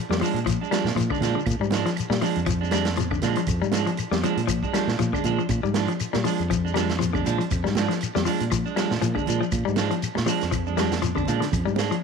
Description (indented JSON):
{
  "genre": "afrobeat",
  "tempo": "119 BPM",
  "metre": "4/4",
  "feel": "swing 56% on 16ths",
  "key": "Bb mixolydian",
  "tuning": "A4 = 437 Hz",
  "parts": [
    { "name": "clean electric guitar", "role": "arpeggios", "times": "0.1-12.0 s", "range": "D3 to G3", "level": "-27 LUFS", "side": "left 12 dB", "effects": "none" },
    { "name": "fingered electric bass", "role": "bass", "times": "0.1-11.9 s", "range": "F2 to Bb2", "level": "-27 LUFS", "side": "equal", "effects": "none" },
    { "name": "vintage drum kit", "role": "drums", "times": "0.1-12.0 s", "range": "hi-hat, kick drum, snare drum", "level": "-30 LUFS", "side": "right 4 dB", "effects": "none" },
    { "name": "congas", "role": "percussion", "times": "0.1-12.0 s", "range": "none", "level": "-34 LUFS", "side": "right 11 dB", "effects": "none" },
    { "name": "shekere", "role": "percussion", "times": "0.1-12.0 s", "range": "none", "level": "-33 LUFS", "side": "left 6 dB", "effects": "none" },
    { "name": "clean electric guitar", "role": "stabs", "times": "0.2-11.9 s", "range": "F3 to D4", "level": "-28 LUFS", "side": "right 13 dB", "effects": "spring reverb" },
    { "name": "claves", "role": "percussion", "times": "0.5-11.7 s", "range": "none", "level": "-40 LUFS", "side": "right 16 dB", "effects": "none" }
  ],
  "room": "light reverb, small room ambience",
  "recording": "1960s-style stereo with parts hard left and right",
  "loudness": "-22 LUFS",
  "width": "side -5 dB against mid",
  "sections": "0.0-12.0 A section",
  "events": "none",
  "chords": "0.0 Bb7"
}